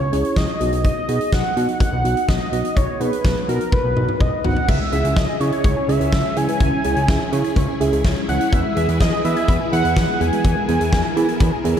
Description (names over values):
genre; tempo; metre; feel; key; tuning
synth-pop; 125 BPM; 4/4; straight; C# dorian; A4 = 439 Hz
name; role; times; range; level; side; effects
wide unison lead; melody; 0.0-11.6 s; A#4 to G#5; -23 LUFS; equal; ping-pong delay
fat analog bass; bass; 0.0-11.8 s; G#1 to E3; -22 LUFS; equal; none
muted felt-like synth keys; accompaniment; 0.1-11.8 s; B3 to B4; -24 LUFS; right 4 dB; chorus
huge arena drum kit; drums; 0.1-11.8 s; crash cymbal, hi-hat, kick drum, snare drum, toms; -21 LUFS; equal; none
string machine, violins; sustained chords; 4.7-11.8 s; C#3 to B4; -26 LUFS; equal; ensemble chorus
warbly dusty pluck; arpeggios; 4.7-11.8 s; E3 to G#6; -29 LUFS; left 2 dB; chorus, ping-pong delay
room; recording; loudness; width
moderate lush hall reverb, RT60 1.7 s, small room ambience; dreamy mix soaked in reverb; -16 LUFS; side -9 dB against mid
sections
0.0-4.7 A section; 4.7-11.8 B section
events
drum fill 3.7-4.7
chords
0.0 C#m; 0.6 B6; 4.7 C#m; 8.5 E